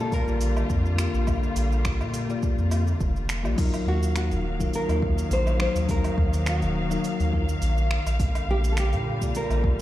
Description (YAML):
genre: sunset chillout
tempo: 104 BPM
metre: 4/4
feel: swing 55% on 16ths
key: unclear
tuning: A4 = 437 Hz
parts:
  - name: nylon-string guitar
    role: melody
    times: 0.0-9.8 s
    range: Gb4 to C5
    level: -31 LUFS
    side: right 1 dB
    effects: ping-pong delay
  - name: bell-like tine electric piano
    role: accompaniment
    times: 0.0-9.8 s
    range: Gb3 to F5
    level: -31 LUFS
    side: left 3 dB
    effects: auto-pan, digital delay
  - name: muted studio string section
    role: sustained chords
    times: 0.0-9.8 s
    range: D3 to F5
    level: -32 LUFS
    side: left 1 dB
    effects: none
  - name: round analog bass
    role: bass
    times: 0.0-9.8 s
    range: Eb1 to Bb2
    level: -25 LUFS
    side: equal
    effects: none
  - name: electronic kick drum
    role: drums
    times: 0.1-9.8 s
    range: none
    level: -27 LUFS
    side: equal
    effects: none
  - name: smooth R&B drum kit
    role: drums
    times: 0.1-9.6 s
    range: cabasa, crash cymbal, finger snaps, hi-hat, woodblock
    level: -35 LUFS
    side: right 2 dB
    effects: none
room: light reverb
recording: played on a big sound system in a bare room, large studio reverb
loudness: -22 LUFS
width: side -14 dB against mid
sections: 0.0-3.6 A section; 3.6-9.8 B section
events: none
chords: 0.0 Bb6; 3.6 Ebmadd9; 8.2 Bb6